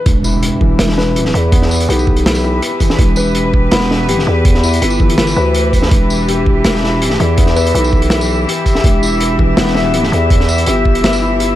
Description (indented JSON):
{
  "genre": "half-time drum and bass",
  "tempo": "164 BPM",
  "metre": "4/4",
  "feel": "half-time",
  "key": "E minor",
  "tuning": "A4 = 440 Hz",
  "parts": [
    { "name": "felt-muted upright piano", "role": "arpeggios", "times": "0.0-11.6 s", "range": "E3 to B4", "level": "-18 LUFS", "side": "left 3 dB", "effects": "digital delay" },
    { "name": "rich chamber cello section", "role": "sustained chords", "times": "0.1-11.6 s", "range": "E3 to E5", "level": "-19 LUFS", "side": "left 1 dB", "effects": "sidechain pumping" },
    { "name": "growling 808-style bass", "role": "bass", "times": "0.1-11.6 s", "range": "E1 to E2", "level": "-15 LUFS", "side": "right 1 dB", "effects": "none" },
    { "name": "crunchy breakbeat drum kit", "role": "drums", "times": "0.1-11.5 s", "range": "hi-hat, snare drum, tambourine", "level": "-18 LUFS", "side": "equal", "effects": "high-pass filter on hats, high-pass filter on snare, high-pass filter on perc, high-pass filter on room" },
    { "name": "electronic kick drum", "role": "drums", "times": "0.1-10.9 s", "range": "none", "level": "-12 LUFS", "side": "right 1 dB", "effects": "none" },
    { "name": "impact", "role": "sound effects", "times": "0.1-1.5 s", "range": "none", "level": "-22 LUFS", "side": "right 1 dB", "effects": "none" }
  ],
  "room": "little or no reverb",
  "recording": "none",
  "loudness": "-10 LUFS",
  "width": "side -13 dB against mid",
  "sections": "0.1-11.6 A section",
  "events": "drop 0.1-11.6; impact 0.1-1.5",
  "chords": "0.1 Em"
}